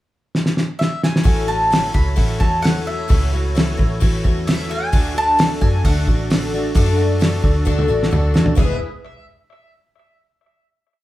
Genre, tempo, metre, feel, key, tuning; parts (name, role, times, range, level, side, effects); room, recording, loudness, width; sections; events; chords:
folk rock and heartland rock; 131 BPM; 4/4; straight; A4 = 440 Hz
cloth-damped thuddy drum kit; drums; 0.3-8.7 s; hi-hat, kick drum, snare drum, toms; -18 LUFS; equal
mandolin; melody; 0.8-8.8 s; E5 to B5; -22 LUFS; equal; tape echo
picked twelve-string acoustic guitar; accompaniment; 1.2-8.8 s; E2 to G#4; -24 LUFS; left 2 dB
musette accordion; sustained chords; 1.2-8.9 s; D4 to E5; -30 LUFS; right 1 dB
vintage muted picked electric bass; bass; 1.3-8.8 s; E1 to F#2; -21 LUFS; equal
light reverb; band playing live in one room; -15 LUFS; side -15 dB against mid
0.0-1.3 pickup bar; 1.3-8.6 pre-chorus; 8.6-10.4 final chord
drum fill 0.3-1.3, 7.7-8.6
0.0 N.C.; 1.3 A6; 4.9 D; 8.6 E